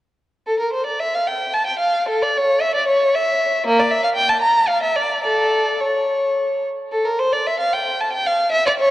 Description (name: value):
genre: classical, baroque-style suite movement for unaccompanied violin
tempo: 103-121 BPM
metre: 3/4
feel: rubato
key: D minor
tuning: A4 = 439 Hz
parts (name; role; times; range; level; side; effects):
- rich violin; solo; 0.5-8.9 s; Bb3 to Bb5; -16 LUFS; equal; none
room: wet church reverb, RT60 3.7 s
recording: worn, warbling old tape, cassette tape, warbly pitch drift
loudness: -16 LUFS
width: side -15 dB against mid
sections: 0.5-8.9 A section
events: none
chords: none